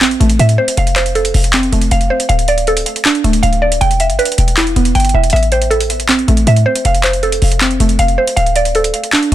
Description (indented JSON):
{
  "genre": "hip hop, trap",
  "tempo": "158 BPM",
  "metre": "4/4",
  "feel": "half-time",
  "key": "A minor",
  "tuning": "A4 = 438 Hz",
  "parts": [
    { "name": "mallet-like synth pluck", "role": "arpeggios", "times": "0.0-9.3 s", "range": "A3 to G5", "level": "-14 LUFS", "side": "right 2 dB", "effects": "chorus, low-pass filter, tape echo" },
    { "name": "short 808-style bass", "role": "bass", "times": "0.0-9.3 s", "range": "D1 to A2", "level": "-14 LUFS", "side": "left 1 dB", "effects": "none" },
    { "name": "trap drum kit", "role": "drums", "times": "0.0-9.3 s", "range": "handclaps, hi-hat", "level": "-17 LUFS", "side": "equal", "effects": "vintage 12-bit sampler grit" }
  ],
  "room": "little or no reverb",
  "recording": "dense, heavily limited modern master",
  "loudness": "-10 LUFS",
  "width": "side -13 dB against mid",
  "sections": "0.0-9.3 A section",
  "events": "none",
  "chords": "0.0 Am; 0.8 F; 2.3 Dm; 3.8 Em; 5.3 Am; 6.8 F; 8.4 Dm"
}